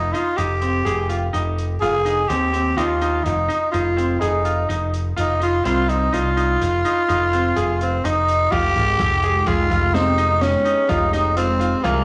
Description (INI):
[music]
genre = progressive instrumental, band music in an uneven meter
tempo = 126 BPM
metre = 7/4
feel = straight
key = F minor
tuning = A4 = 440 Hz
[part]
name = growling tenor saxophone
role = melody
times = 0.0-12.0 s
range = Bb3 to Ab4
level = -22 LUFS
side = equal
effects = cassette tape, tape echo
[part]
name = modern bright picked electric bass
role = bass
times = 0.0-12.0 s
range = F1 to Eb2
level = -25 LUFS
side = equal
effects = none
[part]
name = bright concert grand piano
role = arpeggios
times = 0.1-12.0 s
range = C4 to Ab4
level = -27 LUFS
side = equal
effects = cassette tape
[part]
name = open jazz drum kit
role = drums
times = 0.1-12.0 s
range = crash cymbal, hi-hat, kick drum, snare drum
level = -31 LUFS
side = equal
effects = cassette tape
[part]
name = airy breathy pad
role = accompaniment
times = 8.7-12.0 s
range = Ab3 to G4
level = -31 LUFS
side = equal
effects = chorus, cassette tape
[sound]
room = moderate spring reverb, RT60 1.1 s, small room ambience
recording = home recording on cassette, studio ambience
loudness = -19 LUFS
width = mono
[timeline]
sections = 0.0-8.5 A section; 8.5-12.0 B section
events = none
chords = 0.0 F7(no3); 8.5 Fm7